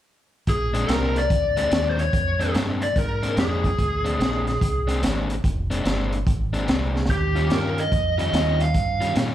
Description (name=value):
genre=electric blues shuffle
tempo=145 BPM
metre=4/4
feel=swing 65% on 8ths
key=Bb mixolydian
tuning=A4 = 440 Hz
part: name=lead guitar through a small cranked amp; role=melody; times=0.5-9.1 s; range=G4 to F5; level=-24 LUFS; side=equal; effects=overdrive, slapback echo
part: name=deep dub fingered electric bass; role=bass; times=0.5-9.3 s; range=F1 to Bb2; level=-26 LUFS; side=equal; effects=none
part: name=crunchy breakbeat drum kit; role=drums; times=0.5-9.3 s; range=hi-hat, kick drum, snare drum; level=-25 LUFS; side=equal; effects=none
part: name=overdriven semi-hollow guitar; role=riff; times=0.7-9.3 s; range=Bb2 to F4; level=-27 LUFS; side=left 4 dB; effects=slapback echo
room=light reverb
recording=live gig heard through the venue's PA, club reverb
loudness=-20 LUFS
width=side -12 dB against mid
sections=0.5-9.3 A section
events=drum fill 6.9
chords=0.5 Bb9; 7.1 Eb9